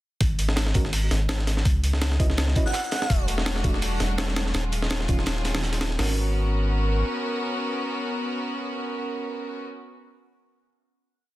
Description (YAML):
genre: drum and bass, jungle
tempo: 166 BPM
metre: 4/4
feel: swing 54% on 16ths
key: G# minor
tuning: A4 = 439 Hz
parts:
  - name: soft dub sub bass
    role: bass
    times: 0.2-7.0 s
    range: D#1 to C#2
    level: -24 LUFS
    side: equal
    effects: none
  - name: breakbeat sampler-style drum kit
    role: drums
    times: 0.2-6.1 s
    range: hi-hat, kick drum, snare drum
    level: -25 LUFS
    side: equal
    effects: small room ambience
  - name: crunchy breakbeat drum kit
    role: drums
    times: 0.2-5.9 s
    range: hi-hat, snare drum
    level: -37 LUFS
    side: right 5 dB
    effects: high-pass filter on hats, small room ambience, high-pass filter on snare, high-pass filter on room
  - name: deep mellow chord stab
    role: stabs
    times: 0.8-10.3 s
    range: D#3 to D#5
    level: -34 LUFS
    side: right 2 dB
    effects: chorus, cassette tape, dub echo
  - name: airy dreamy lead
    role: melody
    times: 2.7-3.1 s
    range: F#5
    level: -33 LUFS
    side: right 1 dB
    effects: chorus, cassette tape, dub echo
  - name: rich chamber string section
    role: sustained chords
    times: 3.1-9.6 s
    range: F#3 to A#4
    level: -29 LUFS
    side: equal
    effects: none
room: light reverb, small room ambience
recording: dense, heavily limited modern master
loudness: -22 LUFS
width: side -16 dB against mid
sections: 0.2-6.0 drop; 6.0-8.9 final chord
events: drop 0.2-6.0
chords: 0.2 N.C.; 1.7 C#m11; 3.1 Em11; 4.5 D#m11; 6.0 G#m11